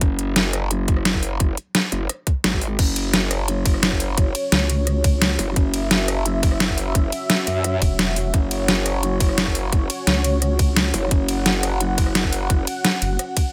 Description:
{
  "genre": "dark technical drum and bass",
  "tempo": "173 BPM",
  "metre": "4/4",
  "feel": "straight",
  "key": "unclear",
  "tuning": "A4 = 441 Hz",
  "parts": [
    { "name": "growl bass", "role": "bass", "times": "0.0-12.7 s", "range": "F#1 to F#2", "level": "-25 LUFS", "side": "equal", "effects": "chorus, overdrive" },
    { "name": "dubstep drum kit", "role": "drums", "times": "0.0-13.4 s", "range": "crash cymbal, hi-hat, ride cymbal, rim click, snare drum", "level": "-24 LUFS", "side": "equal", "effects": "none" },
    { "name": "electronic kick drum", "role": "drums", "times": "0.0-13.4 s", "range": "none", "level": "-22 LUFS", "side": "equal", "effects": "none" },
    { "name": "dark analog pad", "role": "sustained chords", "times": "2.8-13.5 s", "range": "C#4 to F#5", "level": "-29 LUFS", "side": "equal", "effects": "chorus, sidechain pumping" },
    { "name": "vowel-sweep wobble bass", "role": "bass", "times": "4.5-5.4, 7.8-10.9, 13.0-13.2 s", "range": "E1 to C#2", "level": "-23 LUFS", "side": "equal", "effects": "chorus" }
  ],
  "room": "light reverb",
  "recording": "none",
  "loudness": "-20 LUFS",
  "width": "mono",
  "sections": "0.0-13.5 A section",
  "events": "none",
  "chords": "0.0 F#5"
}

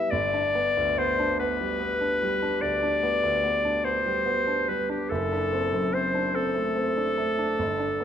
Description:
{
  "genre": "classical, romantic duo for clarinet and grand piano",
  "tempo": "48 BPM (dotted quarters)",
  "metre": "12/8",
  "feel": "rubato",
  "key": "unclear",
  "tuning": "A4 = 440 Hz",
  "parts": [
    { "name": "clear clarinet", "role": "melody", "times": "0.0-8.0 s", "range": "G4 to E5", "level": "-25 LUFS", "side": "left 2 dB", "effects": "none" },
    { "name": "warm grand piano", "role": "accompaniment", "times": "0.0-8.0 s", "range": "F#1 to E4", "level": "-28 LUFS", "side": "right 2 dB", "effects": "none" }
  ],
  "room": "moderate scoring stage reverb, RT60 1.7 s",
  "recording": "none",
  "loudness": "-23 LUFS",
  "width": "side -9 dB against mid",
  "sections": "0.0-8.0 A section",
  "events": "none",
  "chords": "0.1 G; 5.1 D7/F#"
}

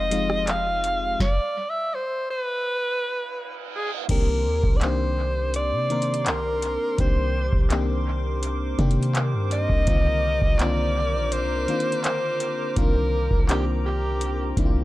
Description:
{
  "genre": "contemporary R&B",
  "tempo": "83 BPM",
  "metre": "4/4",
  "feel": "straight",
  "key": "C minor from 4.1 s",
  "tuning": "A4 = 440 Hz",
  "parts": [
    { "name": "clear alto saxophone", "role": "melody", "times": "0.0-14.5 s", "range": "G4 to F5", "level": "-26 LUFS", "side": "equal", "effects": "dub echo" },
    { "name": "FM electric piano", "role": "accompaniment", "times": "0.0-14.8 s", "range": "D3 to Bb4", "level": "-29 LUFS", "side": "left 3 dB", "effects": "chorus" },
    { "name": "hollow soft pad", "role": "sustained chords", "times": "0.0-14.8 s", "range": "Ab3 to D6", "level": "-35 LUFS", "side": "right 1 dB", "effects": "chorus, sidechain pumping" },
    { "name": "warm 808-style bass", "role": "bass", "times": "0.0-14.8 s", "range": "F1 to C3", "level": "-25 LUFS", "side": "equal", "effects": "none" },
    { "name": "booming analog drum machine", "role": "drums", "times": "0.1-14.8 s", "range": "crash cymbal, handclaps, hi-hat, kick drum, rim click, snare drum", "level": "-24 LUFS", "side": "equal", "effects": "none" },
    { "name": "reverse cymbal", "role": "sound effects", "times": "3.0-4.1 s", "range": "none", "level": "-35 LUFS", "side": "right 8 dB", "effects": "none" }
  ],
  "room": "little or no reverb",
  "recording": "echo-heavy mix",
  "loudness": "-21 LUFS",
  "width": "side -17 dB against mid",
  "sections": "0.0-4.1 A section; 4.1-14.8 B section",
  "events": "stop 1.2-4.1; reverse cymbal 3.0-4.1",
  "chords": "0.0 Fm7; 1.2 N.C.; 4.1 Cm9"
}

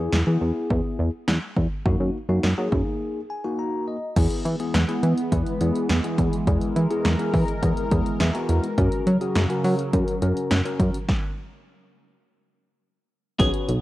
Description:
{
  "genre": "synth-pop",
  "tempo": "104 BPM",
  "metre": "4/4",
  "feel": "straight",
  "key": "unclear",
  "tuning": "A4 = 440 Hz",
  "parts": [
    { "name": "bell-like tine electric piano", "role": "accompaniment", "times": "0.0-13.7 s", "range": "A#3 to A#5", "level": "-28 LUFS", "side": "left 2 dB", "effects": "phaser" },
    { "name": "chorused synth bass", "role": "bass", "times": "0.0-13.8 s", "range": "B1 to F#3", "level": "-21 LUFS", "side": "equal", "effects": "none" },
    { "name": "punchy analog drum machine", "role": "drums", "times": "0.1-13.8 s", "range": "crash cymbal, hi-hat, kick drum, snare drum", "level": "-25 LUFS", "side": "equal", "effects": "overdrive" },
    { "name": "phased analog pad", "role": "sustained chords", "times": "4.5-13.8 s", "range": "C#3 to A#4", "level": "-28 LUFS", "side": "right 1 dB", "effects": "phaser, chorus" },
    { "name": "twelve-string electric guitar", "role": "second line", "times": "13.4-13.5 s", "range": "G#4", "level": "-26 LUFS", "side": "equal", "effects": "none" }
  ],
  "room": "light reverb",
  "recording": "home recording on cassette",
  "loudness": "-21 LUFS",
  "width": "side -16 dB against mid",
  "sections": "0.0-4.2 A section; 4.2-13.4 B section",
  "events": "break 3.0-4.2; tine electric piano fill 3.0-4.2, 7.9-8.8; stop 11.1-13.4",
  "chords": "0.0 E; 1.9 F#6; 4.2 E; 8.8 F#; 11.1 N.C."
}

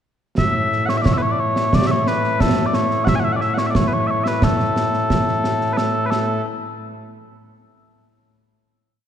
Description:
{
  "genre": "scottish traditional, Scottish pipe music",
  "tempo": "89 BPM",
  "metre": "2/4",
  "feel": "straight",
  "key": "A major",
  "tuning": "A4 = 440 Hz",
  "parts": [
    { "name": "mellow small bagpipes", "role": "melody", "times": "0.4-6.4 s", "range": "A2 to G#5", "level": "-19 LUFS", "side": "left 1 dB", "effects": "slapback echo" },
    { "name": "concert snare drum and concert bass drum", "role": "drums", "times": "0.4-6.4 s", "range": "none", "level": "-20 LUFS", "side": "right 2 dB", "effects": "none" }
  ],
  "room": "moderate concert hall reverb, RT60 2.6 s",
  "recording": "dark, warm production",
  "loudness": "-16 LUFS",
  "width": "side -9 dB against mid",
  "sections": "0.4-5.8 A section; 5.8-7.1 final note",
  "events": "none",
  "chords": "none"
}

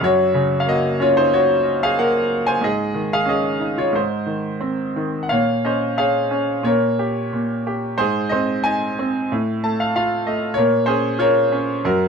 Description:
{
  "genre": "classical, lyrical solo piano",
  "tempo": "92 BPM",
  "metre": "4/4",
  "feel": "rubato",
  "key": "Bb minor from 5.3 s",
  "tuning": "A4 = 441 Hz",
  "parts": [
    { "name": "bright concert grand piano", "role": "solo", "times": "0.0-12.1 s", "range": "Gb2 to A5", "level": "-17 LUFS", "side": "equal", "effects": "none" }
  ],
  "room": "moderate studio reverb, RT60 0.6 s",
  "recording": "dark, warm production",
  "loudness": "-17 LUFS",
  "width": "side -6 dB against mid",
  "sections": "0.0-5.3 A section; 5.3-12.1 B section",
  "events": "grand piano fill 9.3-10.6",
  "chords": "0.0 Gbadd9; 2.6 Absus4; 3.9 Ab; 5.3 Bbm7; 6.7 Bbm6; 8.0 Ab; 9.3 F/A; 10.6 Bbm"
}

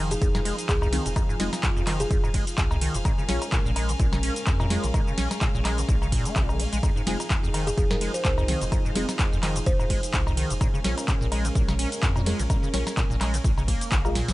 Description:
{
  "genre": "acid house",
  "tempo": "127 BPM",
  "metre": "4/4",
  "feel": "swing 55% on 16ths",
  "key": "F minor",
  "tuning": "A4 = 438 Hz",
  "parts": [
    { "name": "dark analog pad", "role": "sustained chords", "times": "0.0-14.3 s", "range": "F3 to Bb4", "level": "-36 LUFS", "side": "equal", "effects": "chorus, sidechain pumping" },
    { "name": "acid bass, square", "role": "riff", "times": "0.0-14.3 s", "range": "F2 to Db4", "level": "-31 LUFS", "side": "equal", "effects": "analog chorus, sidechain pumping, dub echo" },
    { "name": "warm sub bass", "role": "bass", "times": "0.0-14.3 s", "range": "F1 to F2", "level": "-28 LUFS", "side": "equal", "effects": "sidechain pumping" },
    { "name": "bright chamber string section", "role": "texture", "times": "0.0-14.3 s", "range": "Db4 to Ab5", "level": "-38 LUFS", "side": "left 2 dB", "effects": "sidechain pumping" },
    { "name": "kalimba", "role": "melody", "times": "0.1-2.5, 7.7-10.1 s", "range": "Ab4 to C5", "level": "-32 LUFS", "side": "equal", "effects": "tape echo" },
    { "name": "booming analog drum machine", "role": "drums", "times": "0.1-14.3 s", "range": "cowbell, handclaps, hi-hat, ride cymbal, shaker, snare drum", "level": "-30 LUFS", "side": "equal", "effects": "small room ambience" },
    { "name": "electronic kick drum", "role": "drums", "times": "0.2-14.0 s", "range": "none", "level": "-25 LUFS", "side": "equal", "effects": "small room ambience" },
    { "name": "deep mellow chord stab", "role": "stabs", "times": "0.9-14.2 s", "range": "C4 to F5", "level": "-35 LUFS", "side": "left 2 dB", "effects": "chorus, phaser, cassette tape, dub echo" }
  ],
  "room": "little or no reverb",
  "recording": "nothing above 10.6 kHz",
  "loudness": "-22 LUFS",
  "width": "side -18 dB against mid",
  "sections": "0.0-14.3 A section",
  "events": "drum fill 14.2",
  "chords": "0.0 Fm7; 3.1 Bbm7; 6.8 Fm7; 10.6 Bbm7"
}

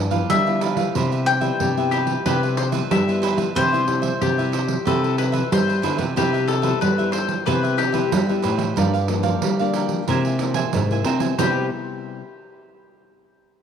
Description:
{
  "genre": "samba and choro",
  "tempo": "92 BPM",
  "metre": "4/4",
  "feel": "straight",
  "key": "C major",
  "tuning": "A4 = 440 Hz",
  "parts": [
    { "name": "bowl-back mandolin", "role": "melody", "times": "0.0-5.5 s", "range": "C5 to A5", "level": "-23 LUFS", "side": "left 4 dB", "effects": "none" },
    { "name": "nylon-string guitar", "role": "accompaniment", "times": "0.0-12.2 s", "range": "G2 to E4", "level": "-28 LUFS", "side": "left 10 dB", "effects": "none" },
    { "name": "nylon-string guitar", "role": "bass", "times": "0.0-11.7 s", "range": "G2 to C4", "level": "-22 LUFS", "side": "equal", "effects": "none" },
    { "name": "cavaquinho", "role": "accompaniment", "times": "0.1-11.7 s", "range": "D4 to Ab5", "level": "-28 LUFS", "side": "right 10 dB", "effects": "none" },
    { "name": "pandeiro", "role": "percussion", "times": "0.1-11.5 s", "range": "none", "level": "-26 LUFS", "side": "right 10 dB", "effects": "none" },
    { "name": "mandolin", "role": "second line", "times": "1.9-11.7 s", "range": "G4 to E5", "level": "-26 LUFS", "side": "left 10 dB", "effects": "none" }
  ],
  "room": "light reverb",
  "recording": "1960s-style stereo with parts hard left and right",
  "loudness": "-18 LUFS",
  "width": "side -8 dB against mid",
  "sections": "0.0-6.2 A section; 6.2-11.4 B section; 11.4-13.6 C section",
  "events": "none",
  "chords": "0.0 G13; 0.9 Cmaj7; 8.8 Gm7; 10.1 C7b13; 11.4 Cmaj7"
}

